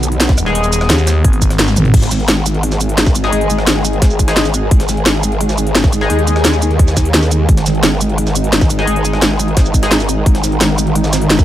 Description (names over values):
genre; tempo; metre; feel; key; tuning
dark technical drum and bass; 173 BPM; 4/4; straight; G# minor; A4 = 440 Hz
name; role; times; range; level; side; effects
swarming drone; sustained chords; 0.0-11.4 s; D#3 to G#4; -19 LUFS; equal; built-in reverb, sidechain pumping
growl bass; bass; 0.0-11.4 s; G#1 to D#2; -16 LUFS; equal; chorus, overdrive
drum and bass drum kit; drums; 0.0-11.4 s; crash cymbal, hi-hat, rim click, shaker, snare drum, toms; -15 LUFS; equal; none
jungle sampler-style drum kit; drums; 0.0-11.4 s; hi-hat, snare drum; -25 LUFS; equal; none
electronic kick drum; drums; 0.3-11.4 s; none; -11 LUFS; equal; none
growling FM bass; bass; 0.4-1.9 s; D#1 to D#2; -14 LUFS; equal; none
band-passed chord stab; stabs; 0.5-9.9 s; G#3 to G#4; -20 LUFS; left 2 dB; chorus, phaser, cassette tape, tape echo
room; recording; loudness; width
little or no reverb; none; -11 LUFS; side -12 dB against mid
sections
0.0-1.9 A section; 1.9-11.4 A section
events
drop 0.0-1.9, 1.9-11.4; band accent 1.6; drum fill 1.7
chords
0.0 G#5